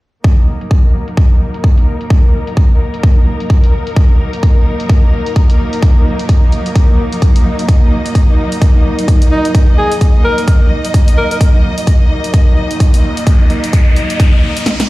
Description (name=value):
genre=bass house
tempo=129 BPM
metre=4/4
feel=swing 59% on 16ths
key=Eb minor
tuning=A4 = 441 Hz
part: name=rich studio string section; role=sustained chords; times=0.2-14.9 s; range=Gb3 to Eb5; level=-20 LUFS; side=equal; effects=sidechain pumping, low-pass filter
part: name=electronic kick drum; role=drums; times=0.2-14.3 s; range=none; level=-8 LUFS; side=equal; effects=overdrive
part: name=house drum kit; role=drums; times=0.2-14.9 s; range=hi-hat, snare drum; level=-23 LUFS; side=equal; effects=low-pass filter on hats, low-pass filter on snare
part: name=warbly tape-like pad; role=texture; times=2.3-14.9 s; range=Eb4 to Eb5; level=-24 LUFS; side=left 1 dB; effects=chorus, built-in reverb, phaser, sidechain pumping
part: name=clear alto saxophone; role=melody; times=9.3-11.4 s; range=Eb4 to Bb4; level=-16 LUFS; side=left 1 dB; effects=tape echo
part: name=riser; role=sound effects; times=12.0-14.9 s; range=none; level=-23 LUFS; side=left 1 dB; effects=none
room=little or no reverb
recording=played on a big sound system in a bare room, large studio reverb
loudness=-9 LUFS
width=side -19 dB against mid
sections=0.2-14.9 A section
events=fade-in on ambient pad 0.2-14.9; filter sweep on drum 0.2-14.9; filter sweep on string section 0.2-14.9; riser 12.0-14.9; kick drops out 14.7; drum fill 14.7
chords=0.2 Ebm